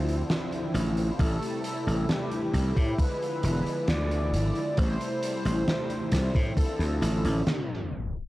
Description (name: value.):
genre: vaporwave.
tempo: 67 BPM.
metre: 4/4.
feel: straight.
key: A minor.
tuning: A4 = 440 Hz.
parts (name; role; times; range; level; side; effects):
warm velvety synth lead; melody; 0.0-7.9 s; G4 to D5; -35 LUFS; equal; chorus, tape echo.
mellow synth brass; accompaniment; 0.0-8.3 s; C3 to E4; -32 LUFS; equal; ensemble chorus, tape echo.
soft string machine; sustained chords; 0.0-8.3 s; D3 to D5; -40 LUFS; equal; none.
slap bass; bass; 0.0-8.3 s; E1 to A2; -27 LUFS; equal; tube saturation.
oversized low-tuned drum kit; drums; 0.1-8.3 s; hi-hat, snare drum; -33 LUFS; equal; none.
electronic kick drum; drums; 1.2-8.1 s; none; -26 LUFS; equal; none.
room: little or no reverb.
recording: cassette tape, tape stop.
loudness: -25 LUFS.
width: side -17 dB against mid.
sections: 0.0-8.3 A section.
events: tape stop 7.5-8.3.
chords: 0.0 Dm9; 1.2 Am7; 3.0 E7b9; 4.8 Am7; 6.6 Dm9.